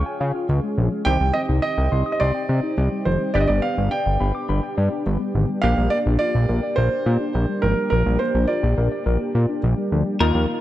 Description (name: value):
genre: pop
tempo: 105 BPM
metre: 4/4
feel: straight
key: unclear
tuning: A4 = 444 Hz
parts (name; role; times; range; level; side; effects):
- warm concert grand piano; melody; 0.0-9.6 s; Bb4 to G5; -24 LUFS; right 2 dB; digital delay
- funky polysynth comp; accompaniment; 0.0-10.6 s; Bb3 to Ab4; -27 LUFS; equal; chorus
- mellow tine electric piano; arpeggios; 0.0-10.6 s; D3 to Eb6; -27 LUFS; left 3 dB; medium stereo tremolo, digital delay
- fat analog bass; bass; 0.0-10.5 s; F1 to Db3; -19 LUFS; equal; none
- twelve-string electric guitar; second line; 10.2-10.4 s; Bb4; -24 LUFS; left 3 dB; vibrato effect
room: light reverb, digital ambience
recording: dark, warm production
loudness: -18 LUFS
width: side -14 dB against mid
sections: 0.0-10.2 A section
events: none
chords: 0.0 Db; 1.1 Cm; 3.3 G; 5.6 Bb6